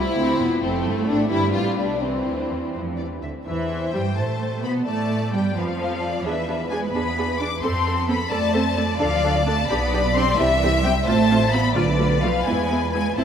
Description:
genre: quick classical-period movement for string orchestra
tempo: 87 BPM (dotted quarters)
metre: 6/8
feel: straight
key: C major, A minor from 3.5 s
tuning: A4 = 440 Hz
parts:
  - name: rich studio violin section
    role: melody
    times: 0.0-13.2 s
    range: A4 to D6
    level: -26 LUFS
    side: left 5 dB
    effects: none
  - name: rich studio violin section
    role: second line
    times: 0.0-13.2 s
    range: C4 to E5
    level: -25 LUFS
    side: left 2 dB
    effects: none
  - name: rich studio viola section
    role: accompaniment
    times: 0.0-13.2 s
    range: E3 to A4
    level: -26 LUFS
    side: right 1 dB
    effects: none
  - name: rich studio cello section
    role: bass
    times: 0.2-13.2 s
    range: D2 to D4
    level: -26 LUFS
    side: right 5 dB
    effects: none
  - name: rich studio double bass section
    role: bass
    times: 0.2-13.2 s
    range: E1 to B2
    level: -27 LUFS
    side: right 2 dB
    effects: none
room: wet cathedral reverb, RT60 6.2 s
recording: in a vast, echoing space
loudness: -19 LUFS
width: side -8 dB against mid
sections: 0.0-3.5 A section; 3.5-13.2 B section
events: none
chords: 0.0 C; 0.6 F; 1.3 G; 2.0 C; 3.5 Am/E; 4.9 Dm; 6.2 E7; 7.6 F; 9.0 Dm; 9.7 G/B; 10.4 C; 11.1 F/A; 11.8 Bm7b5; 12.5 E

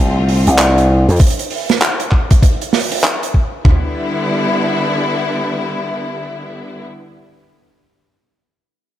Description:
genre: glitch hop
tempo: 98 BPM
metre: 4/4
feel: swing 62% on 16ths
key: E phrygian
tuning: A4 = 442 Hz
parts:
  - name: bright studio string section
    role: sustained chords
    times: 0.0-6.9 s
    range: D3 to F4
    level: -19 LUFS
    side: left 2 dB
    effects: sidechain pumping
  - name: slap bass with an envelope filter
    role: bass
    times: 0.0-1.2 s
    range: C2 to F2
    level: -11 LUFS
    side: equal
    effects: none
  - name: big rock drum kit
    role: drums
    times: 0.3-3.3 s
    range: handclaps, hi-hat, snare drum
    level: -17 LUFS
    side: right 2 dB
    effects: none
  - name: boom bap sampler-style drum kit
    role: drums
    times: 1.2-3.8 s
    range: kick drum, toms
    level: -11 LUFS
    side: equal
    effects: none
room: light reverb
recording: none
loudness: -12 LUFS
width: side -12 dB against mid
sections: 0.0-3.6 A section; 3.6-6.1 B section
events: drop 0.0-3.6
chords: 0.0 Dm7; 3.6 Em7

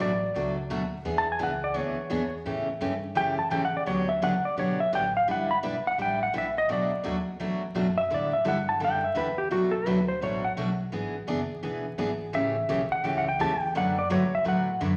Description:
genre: country, western swing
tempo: 170 BPM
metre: 4/4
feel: swing 63% on 8ths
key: unclear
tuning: A4 = 441 Hz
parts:
  - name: clean lap steel guitar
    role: melody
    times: 0.0-14.8 s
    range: F#4 to B5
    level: -29 LUFS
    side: equal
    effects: none
  - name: picked steel-string acoustic guitar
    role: accompaniment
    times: 0.0-14.9 s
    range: B2 to B4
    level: -31 LUFS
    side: equal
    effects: none
  - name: upright bass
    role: bass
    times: 0.0-15.0 s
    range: E1 to A2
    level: -41 LUFS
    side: equal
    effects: none
room: wet large studio reverb, RT60 1.4 s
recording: vinyl crackle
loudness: -27 LUFS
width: mono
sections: 0.0-15.0 A section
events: electric slide guitar solo 0.0-15.0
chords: 0.0 Bm7; 1.1 E7; 2.5 A7; 3.9 Gmaj7; 5.3 Em7/G; 6.7 Bm7; 8.1 A7sus4; 9.5 Bm7; 10.9 E7; 12.3 A7; 13.8 D6

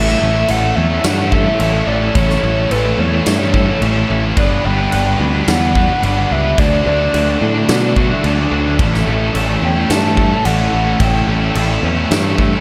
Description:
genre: rock, shoegaze and dream pop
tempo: 108 BPM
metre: 4/4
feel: straight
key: A mixolydian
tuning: A4 = 438 Hz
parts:
  - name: breathy flute-like synth lead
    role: melody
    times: 0.0-12.1 s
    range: B4 to A5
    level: -22 LUFS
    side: equal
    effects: chorus, tape echo
  - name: string machine, full ensemble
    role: sustained chords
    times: 0.0-12.6 s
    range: A4 to D6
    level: -31 LUFS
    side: equal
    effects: none
  - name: twangy electric guitar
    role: arpeggios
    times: 0.0-12.6 s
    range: E3 to A4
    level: -30 LUFS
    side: equal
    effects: none
  - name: biting overdriven guitar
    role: riff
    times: 0.0-12.6 s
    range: A2 to B4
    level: -24 LUFS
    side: equal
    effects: reverse reverb
  - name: crunchy overdriven guitar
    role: riff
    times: 0.0-12.6 s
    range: G2 to E4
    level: -26 LUFS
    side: equal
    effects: none
  - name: thick fuzz guitar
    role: riff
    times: 0.0-12.6 s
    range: G2 to D4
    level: -23 LUFS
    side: equal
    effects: distortion, ensemble chorus
  - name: modern bright picked electric bass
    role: bass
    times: 0.0-12.5 s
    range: G1 to B2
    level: -20 LUFS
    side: equal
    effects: none
  - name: huge arena drum kit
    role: drums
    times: 0.1-12.5 s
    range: crash cymbal, kick drum, snare drum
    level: -22 LUFS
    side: equal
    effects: none
room: light reverb, studio reverb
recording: none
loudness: -15 LUFS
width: mono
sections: 0.0-12.6 A section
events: none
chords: 0.0 A; 4.4 Gmaj7; 6.6 D; 8.8 A

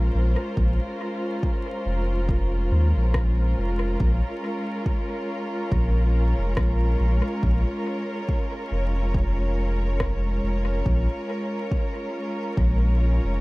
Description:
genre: ambient dub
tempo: 70 BPM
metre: 4/4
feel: swing 56% on 16ths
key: Bb minor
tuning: A4 = 440 Hz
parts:
  - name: muted studio string section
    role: sustained chords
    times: 0.0-13.4 s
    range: Ab3 to Db5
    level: -29 LUFS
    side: equal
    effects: none
  - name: warm sub bass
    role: bass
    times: 0.0-13.4 s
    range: F1 to Eb2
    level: -21 LUFS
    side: equal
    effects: none
  - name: electronic kick drum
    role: drums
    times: 0.6-12.8 s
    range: none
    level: -25 LUFS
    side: equal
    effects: overdrive
  - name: electronic rim click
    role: drums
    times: 3.1-10.2 s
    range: none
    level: -34 LUFS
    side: left 1 dB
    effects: dub echo
room: little or no reverb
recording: echo-heavy mix, vinyl crackle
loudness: -22 LUFS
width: side -22 dB against mid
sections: 0.0-13.4 A section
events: none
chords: 0.0 Bbm9

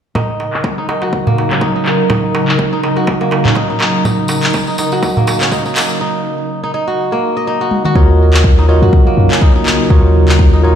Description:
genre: afro house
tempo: 123 BPM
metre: 4/4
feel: swing 56% on 16ths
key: Eb minor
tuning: A4 = 440 Hz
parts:
  - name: ethereal airy pad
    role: sustained chords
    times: 0.5-10.8 s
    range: Db3 to Bb4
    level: -18 LUFS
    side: right 1 dB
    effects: ensemble chorus, built-in reverb, sidechain pumping
  - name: kora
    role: arpeggios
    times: 0.2-10.8 s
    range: Bb3 to Eb5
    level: -18 LUFS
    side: equal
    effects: sidechain pumping, low-pass filter, ping-pong delay
  - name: electronic kick drum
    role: drums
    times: 0.2-10.5 s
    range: none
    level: -13 LUFS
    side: equal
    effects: overdrive, high-pass filter on kick, small room ambience, high-pass filter on room
  - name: darbuka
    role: percussion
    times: 0.2-5.9 s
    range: none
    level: -19 LUFS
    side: right 2 dB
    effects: none
  - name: afro-pop drum kit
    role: drums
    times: 0.5-10.4 s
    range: handclaps, toms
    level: -19 LUFS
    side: left 1 dB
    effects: low-pass filter on snare, small room ambience, low-pass filter on toms
  - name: tambourine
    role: percussion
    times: 4.0-6.0 s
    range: none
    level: -25 LUFS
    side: equal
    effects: none
  - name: tine electric piano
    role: stabs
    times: 8.0-10.8 s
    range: F4 to Db5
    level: -16 LUFS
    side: right 1 dB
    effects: medium stereo tremolo, sidechain pumping, ping-pong delay
  - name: warm 808-style bass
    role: bass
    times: 8.0-10.7 s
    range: Eb2 to Gb2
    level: -11 LUFS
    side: equal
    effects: sidechain pumping
room: light reverb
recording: played on a big sound system in a bare room, large studio reverb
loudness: -10 LUFS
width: side -9 dB against mid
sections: 0.1-8.0 A section; 8.0-10.8 B section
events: filter sweep on drum 0.1-8.0; filter sweep on ambient pad 0.1-8.0; break 6.0-8.0; drum fill 7.7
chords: 0.1 Ebm7

